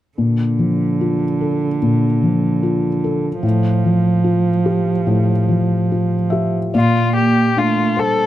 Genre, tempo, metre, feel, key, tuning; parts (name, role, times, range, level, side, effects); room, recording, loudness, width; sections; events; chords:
neoclassical piano and strings; 73 BPM; 4/4; rubato; A4 = 440 Hz
muted cello; second line; 0.2-8.3 s; D3 to Bb3; -20 LUFS; right 6 dB
felt-muted upright piano; accompaniment; 0.2-8.3 s; A2 to E5; -16 LUFS; left 2 dB
muted violin; melody; 6.8-8.3 s; F4 to A4; -17 LUFS; left 4 dB
moderate booth ambience, RT60 0.2 s; dry, close 1970s-style studio recording; -14 LUFS; side -13 dB against mid
0.2-6.7 A section; 6.7-8.3 B section
0.2 Bbmaj7; 3.4 Fadd9/A; 6.7 Bbmaj7